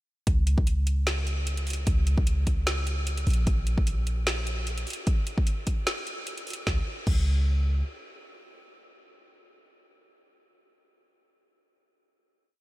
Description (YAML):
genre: future bass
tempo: 150 BPM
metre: 4/4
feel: swing 54% on 16ths, half-time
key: unclear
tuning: A4 = 439 Hz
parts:
  - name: warm 808-style bass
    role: bass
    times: 0.3-7.8 s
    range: Bb1 to Db2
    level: -26 LUFS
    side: equal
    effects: sidechain pumping
  - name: electronic kick drum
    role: drums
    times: 0.3-7.2 s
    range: none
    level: -26 LUFS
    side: equal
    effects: small room ambience
  - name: trap drum kit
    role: drums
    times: 0.3-7.2 s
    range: crash cymbal, hi-hat, snare drum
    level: -32 LUFS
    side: equal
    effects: small room ambience
room: little or no reverb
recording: none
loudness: -24 LUFS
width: side -18 dB against mid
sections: 0.3-6.7 drop; 6.7-9.9 final note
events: drop 0.3-6.7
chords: none